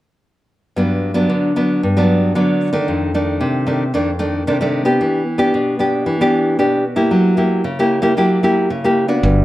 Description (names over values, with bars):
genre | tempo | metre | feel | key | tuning
samba | 113 BPM | 4/4 | straight | G major | A4 = 439 Hz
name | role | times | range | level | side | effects
nylon-string guitar | accompaniment | 0.8-9.4 s | F2 to G4 | -14 LUFS | equal | none
modern bright fingered electric bass | bass | 9.2-9.4 s | G1 | -13 LUFS | equal | none
room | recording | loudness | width
wet large studio reverb, RT60 0.9 s | none | -14 LUFS | side -16 dB against mid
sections
0.8-9.2 A section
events
none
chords
0.8 Gmaj7; 2.9 F13; 5.0 Em7; 7.1 F#7b9